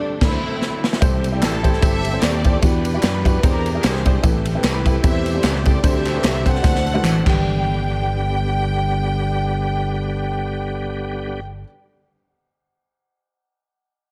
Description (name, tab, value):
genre	uptempo gospel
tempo	150 BPM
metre	4/4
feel	swing 56% on 8ths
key	G major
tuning	A4 = 439 Hz
part	clear symphonic string section	melody	0.0-11.4 s	G3 to G5	-28 LUFS	equal	none
part	bright tonewheel organ	sustained chords	0.0-11.4 s	D3 to G5	-30 LUFS	equal	slow rotary speaker, overdrive, chorus vibrato
part	fingered electric bass	bass	0.2-11.6 s	G1 to F#2	-25 LUFS	equal	none
part	swinging big-band drum kit	drums	0.2-7.3 s	crash cymbal, kick drum, ride cymbal, snare drum, toms	-21 LUFS	equal	none
part	warm upright piano	accompaniment	1.0-11.7 s	G2 to D5	-29 LUFS	equal	none
part	tambourine and handclaps	percussion	1.0-7.6 s	none	-33 LUFS	equal	none
room	light reverb, small room ambience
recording	none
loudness	-19 LUFS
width	mono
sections	0.0-1.0 A section; 1.0-7.4 B section; 7.4-10.6 C section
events	band accent 0.0-1.0; drum fill 0.6-1.0, 6.6-7.4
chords	0.2 D9; 1.0 C6; 2.6 Em9; 3.4 E7alt; 4.2 Am9; 5.8 D7sus4; 6.6 D9; 7.2 G